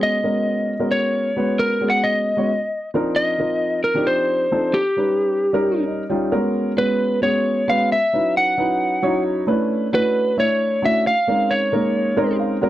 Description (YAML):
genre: jazz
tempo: 266 BPM (eighths)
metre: 7/8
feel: straight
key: unclear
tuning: A4 = 440 Hz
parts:
  - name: lightly driven lead guitar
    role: melody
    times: 0.0-12.4 s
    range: G4 to Gb5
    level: -19 LUFS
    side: equal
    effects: slapback echo
  - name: dark baby grand piano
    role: accompaniment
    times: 0.0-12.7 s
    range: F3 to G5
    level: -21 LUFS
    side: equal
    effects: none
room: light reverb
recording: dry, close 1970s-style studio recording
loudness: -17 LUFS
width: side -14 dB against mid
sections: 0.0-6.3 A section; 6.3-12.7 B section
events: grand piano fill 5.7-6.3, 12.0-12.6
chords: 0.0 Abm11; 2.5 Cm11; 4.7 Eb7b13; 6.3 G#m11; 7.9 C#m11; 9.5 Bm11; 11.1 A#m11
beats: | 0.01 0.24 0.46 0.69 0.91 1.14 1.36 | 1.59 1.81 2.04 2.27 2.49 2.72 2.94 | 3.17 3.39 3.62 3.84 4.07 4.30 4.52 | 4.75 4.97 5.20 5.42 5.65 5.88 6.10 | 6.33 6.55 6.78 7.00 7.23 7.46 7.68 | 7.91 8.13 8.36 8.58 8.81 9.03 9.26 | 9.48 9.71 9.93 10.16 10.38 10.61 10.83 | 11.06 11.28 11.51 11.73 11.95 12.18 12.40 | 12.63